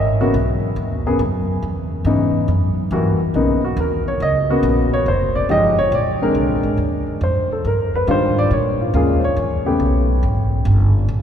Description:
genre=jazz piano trio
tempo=139 BPM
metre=4/4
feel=swing 68% on 8ths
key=unclear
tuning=A4 = 440 Hz
part: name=dark baby grand piano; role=melody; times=0.0-10.2 s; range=Db3 to Eb5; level=-18 LUFS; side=left 1 dB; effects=none
part: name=upright bass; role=bass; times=0.0-11.2 s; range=F1 to Bb2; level=-19 LUFS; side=equal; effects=none
room=wet cathedral reverb, RT60 4.5 s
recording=recorded in a church or concert hall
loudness=-15 LUFS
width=side -8 dB against mid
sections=0.0-6.8 A section; 6.8-11.2 A section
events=grand piano solo 0.0-6.8, 6.8-11.2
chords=0.0 Abm7; 1.6 Dbm9; 2.5 Gb7b9; 3.3 Bmaj9; 5.1 Fm9; 5.9 Bb9; 6.8 Ebmaj9; 8.5 Bbm7; 9.4 A9; 10.2 Abmaj7sus2

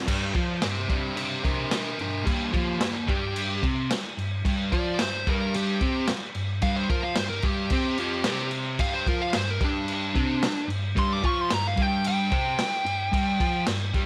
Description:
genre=garage rock duo or trio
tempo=110 BPM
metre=4/4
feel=straight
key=G minor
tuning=A4 = 440 Hz
part: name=fuzz guitar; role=riff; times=0.0-14.1 s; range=F2 to F4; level=-30 LUFS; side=equal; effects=distortion
part: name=crunchy breakbeat drum kit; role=drums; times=0.1-14.1 s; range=crash cymbal, kick drum, snare drum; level=-30 LUFS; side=equal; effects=none
part: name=fuzz lead guitar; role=melody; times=0.6-13.6 s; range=Bb3 to D6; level=-31 LUFS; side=equal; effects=distortion
room=light reverb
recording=none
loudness=-26 LUFS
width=mono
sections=0.1-14.1 A section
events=lead electric guitar solo 0.1-14.1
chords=none

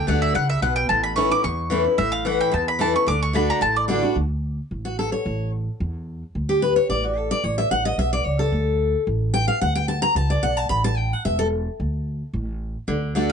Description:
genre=bluegrass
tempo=220 BPM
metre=4/4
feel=straight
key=D major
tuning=A4 = 440 Hz
part: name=mandolin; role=melody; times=0.0-3.8, 13.3 s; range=D5 to D6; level=-22 LUFS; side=right 2 dB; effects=none
part: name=picked steel-string acoustic guitar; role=accompaniment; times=0.0-13.3 s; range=E2 to B5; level=-22 LUFS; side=left 2 dB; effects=none
part: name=upright bass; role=bass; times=0.1-13.3 s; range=E1 to E2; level=-25 LUFS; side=right 1 dB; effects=none
room=light reverb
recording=dark, warm production, nothing above 10.9 kHz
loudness=-20 LUFS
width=side -7 dB against mid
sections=0.0-4.2 A section; 4.2-12.9 A section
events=mandolin solo 0.0-4.2; steel-string acoustic guitar solo 4.2-12.9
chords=0.0 D; 0.9 A; 3.1 D; 4.2 D5; 5.3 A; 6.3 D5; 7.4 A; 8.5 D5; 10.7 A5; 11.8 D5

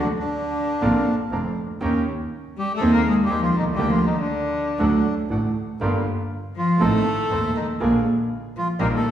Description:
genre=tango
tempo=120 BPM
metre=4/4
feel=rubato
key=G minor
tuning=A4 = 440 Hz
part: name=bandoneon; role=melody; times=0.0-9.1 s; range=D4 to Bb4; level=-26 LUFS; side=equal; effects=none
part: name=rich cello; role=second line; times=0.0-9.1 s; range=D3 to Bb3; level=-25 LUFS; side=left 2 dB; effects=none
part: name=warm concert grand piano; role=accompaniment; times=0.0-9.0 s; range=Eb1 to Ab4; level=-24 LUFS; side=right 2 dB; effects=none
part: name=bandoneon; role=stabs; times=0.0-9.0 s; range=A3 to Bb4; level=-34 LUFS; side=right 2 dB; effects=none
part: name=clear double bass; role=bass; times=0.0-9.0 s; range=F1 to Eb2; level=-26 LUFS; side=right 1 dB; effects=none
room=wet recital hall reverb, RT60 1.6 s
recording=recorded in a church or concert hall, small room ambience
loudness=-20 LUFS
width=side -10 dB against mid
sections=0.0-9.1 A section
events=none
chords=0.0 N.C.; 0.8 Bbadd9; 1.8 Eb7; 2.8 Ab/Eb; 3.8 Gm/D; 4.8 D; 5.8 Gm7; 6.8 Adim; 7.8 Bb7

